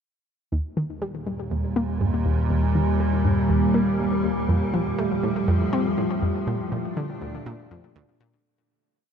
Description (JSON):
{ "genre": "ambient, sequencer-driven space music", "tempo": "121 BPM", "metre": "4/4", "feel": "straight", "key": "Eb lydian", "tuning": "A4 = 440 Hz", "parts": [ { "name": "evolving wavetable pad", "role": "sustained chords", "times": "1.3-8.4 s", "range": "Eb2 to D4", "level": "-23 LUFS", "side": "equal", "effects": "chorus, built-in reverb" }, { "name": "analog pluck", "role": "riff", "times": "0.5-8.3 s", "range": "D2 to C4", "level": "-26 LUFS", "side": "equal", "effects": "chorus, ping-pong delay" } ], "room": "wet huge ambient reverb, RT60 7.7 s", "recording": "in a vast, echoing space", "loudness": "-21 LUFS", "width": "side -7 dB against mid", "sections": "0.5-8.5 A section", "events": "filter sweep on synth arpeggio sound 0.5-8.5; fade-out 5.8-8.5", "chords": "0.5 Eb; 4.5 Fadd9; 6.5 Bbmaj7" }